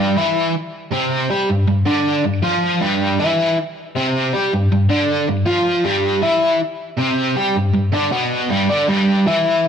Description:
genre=rock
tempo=158 BPM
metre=4/4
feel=straight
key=G mixolydian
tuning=A4 = 440 Hz
part: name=biting overdriven guitar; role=solo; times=0.0-9.6 s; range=G2 to G4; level=-15 LUFS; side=equal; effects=harmonic tremolo
room=moderate large studio reverb, RT60 1.0 s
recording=band playing live in one room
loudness=-15 LUFS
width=side -7 dB against mid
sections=0.0-8.9 A section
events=none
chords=0.0 G5; 8.9 N.C.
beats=0.16 0.54 0.92 | 1.30 1.68 2.06 2.44 | 2.81 3.19 3.57 3.95 | 4.33 4.71 5.09 5.46 | 5.84 6.22 6.60 6.98 | 7.36 7.74 8.12 8.51 | 8.89 9.27

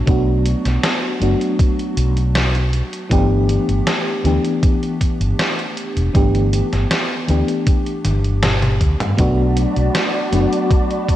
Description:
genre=vaporwave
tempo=79 BPM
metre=4/4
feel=straight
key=G major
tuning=A4 = 444 Hz
part: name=FM electric piano with soft pad layer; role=accompaniment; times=0.0-11.2 s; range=E3 to G4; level=-20 LUFS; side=left 1 dB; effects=tremolo, wide subtle chorus, vintage 12-bit sampler grit, tape echo
part: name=mellow fretless electric bass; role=bass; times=0.1-10.4 s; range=E1 to G2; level=-17 LUFS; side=equal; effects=none
part: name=electronic kick drum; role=drums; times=0.1-11.2 s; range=none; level=-16 LUFS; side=equal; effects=overdrive
part: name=gated 80s digital drum machine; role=drums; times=0.1-11.2 s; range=hi-hat, snare drum, toms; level=-22 LUFS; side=equal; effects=gated reverb, gated reverb snare
part: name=soft string machine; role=sustained chords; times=9.3-11.2 s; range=F#4 to B5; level=-23 LUFS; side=right 1 dB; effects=phaser, ensemble chorus, vintage 12-bit sampler grit
room=light reverb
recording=cassette tape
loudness=-15 LUFS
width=side -13 dB against mid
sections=0.0-11.2 A section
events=drum fill 8.0-9.2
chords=0.0 Bm7; 3.1 G69; 9.2 Bm7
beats=| 0.07 0.83 1.59 2.35 | 3.11 3.87 4.63 5.39 | 6.15 6.91 7.67 8.43 | 9.19 9.95 10.71

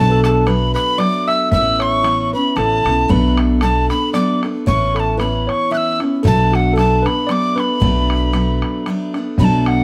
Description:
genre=celtic folk, Celtic waltz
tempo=114 BPM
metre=3/4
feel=swing 54% on 8ths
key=B minor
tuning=A4 = 440 Hz
part: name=mellow tin whistle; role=melody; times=0.0-9.8 s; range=F#5 to F#6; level=-21 LUFS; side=equal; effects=plate reverb
part: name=tine electric piano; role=second line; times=0.0-8.8 s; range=F#4 to E5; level=-24 LUFS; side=equal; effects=none
part: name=picked steel-string acoustic guitar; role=accompaniment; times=0.0-9.8 s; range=A2 to E4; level=-21 LUFS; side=equal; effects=none
part: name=upright bass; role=bass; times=0.0-9.8 s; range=A1 to B1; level=-21 LUFS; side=equal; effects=none
part: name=bodhran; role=percussion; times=0.2-9.8 s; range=none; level=-25 LUFS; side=equal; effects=none
room=moderate small room ambience, RT60 0.5 s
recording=none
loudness=-16 LUFS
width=mono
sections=0.0-9.4 A section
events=none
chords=0.0 Bm7; 1.5 Aadd9; 3.1 Bm7; 4.7 Aadd9; 6.2 Bm7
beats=0.47 1.00 | 1.52 2.05 2.57 | 3.10 3.62 4.15 | 4.67 5.20 5.72 | 6.25 6.77 7.29 | 7.82 8.34 8.86 | 9.39

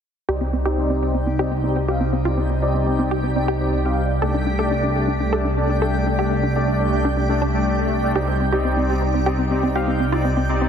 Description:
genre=house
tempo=122 BPM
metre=4/4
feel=straight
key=C dorian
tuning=A4 = 440 Hz
part: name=airy breathy pad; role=sustained chords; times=0.3-10.7 s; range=C3 to D5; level=-24 LUFS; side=equal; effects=chorus
part: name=wide unison pluck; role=arpeggios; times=0.3-10.7 s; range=C4 to A4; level=-25 LUFS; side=equal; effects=tape echo
part: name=soft supersaw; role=stabs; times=0.3-10.7 s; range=A3 to G5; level=-24 LUFS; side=left 2 dB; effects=low-pass filter, tape echo
part: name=dark detuned saw bass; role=bass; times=0.3-10.7 s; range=C2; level=-24 LUFS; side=equal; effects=none
part: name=backwards swelling texture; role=texture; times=1.2-10.7 s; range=G4 to G5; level=-31 LUFS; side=equal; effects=built-in reverb
room=moderate lush hall reverb, RT60 2.4 s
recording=dense, heavily limited modern master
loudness=-18 LUFS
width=side -8 dB against mid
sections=0.3-10.7 A section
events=filter sweep on supersaw synth 0.3-10.7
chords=0.3 Cmadd9; 4.2 Gsus2/C; 8.2 Cmadd9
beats=| 0.29 0.78 1.27 1.76 | 2.25 2.75 3.24 3.73 | 4.22 4.71 5.20 5.70 | 6.19 6.68 7.17 7.66 | 8.15 8.65 9.14 9.63 | 10.12 10.61

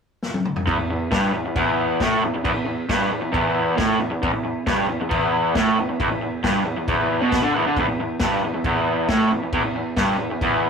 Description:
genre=garage rock duo or trio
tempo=136 BPM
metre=4/4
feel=straight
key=E minor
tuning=A4 = 440 Hz
part: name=vintage drum kit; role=drums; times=0.2-10.5 s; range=crash cymbal, kick drum, snare drum, toms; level=-26 LUFS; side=left 1 dB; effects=none
part: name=raw garage guitar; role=riff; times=0.7-10.7 s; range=E2 to D3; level=-20 LUFS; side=equal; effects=overdrive
room=moderate small room reverb, RT60 0.5 s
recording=rough rehearsal-room recording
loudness=-19 LUFS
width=side -6 dB against mid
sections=0.7-10.7 A section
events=drum fill 0.2-0.7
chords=none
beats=0.23 | 0.67 1.11 1.56 2.00 | 2.45 2.89 3.33 3.78 | 4.22 4.66 5.11 5.55 | 5.99 6.43 6.88 7.32 | 7.76 8.21 8.65 9.09 | 9.53 9.97 10.42

